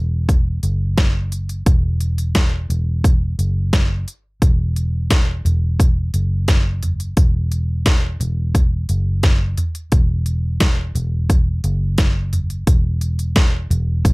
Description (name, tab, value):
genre	piano-driven pop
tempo	87 BPM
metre	4/4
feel	straight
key	unclear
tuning	A4 = 440 Hz
part	vintage muted fingered electric bass	bass	0.0-14.1 s	E1 to B1	-19 LUFS	equal	none
part	pop drum kit	drums	0.3-14.1 s	hi-hat, kick drum, snare drum, toms	-16 LUFS	equal	none
room	little or no reverb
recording	faint mains hum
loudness	-16 LUFS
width	side -26 dB against mid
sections	0.0-14.1 A section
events	none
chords	none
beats	0.29 0.97 | 1.66 2.35 3.04 3.73 | 4.42 5.11 5.79 6.48 | 7.17 7.86 8.55 9.23 | 9.92 10.61 11.30 11.99 | 12.67 13.36 14.05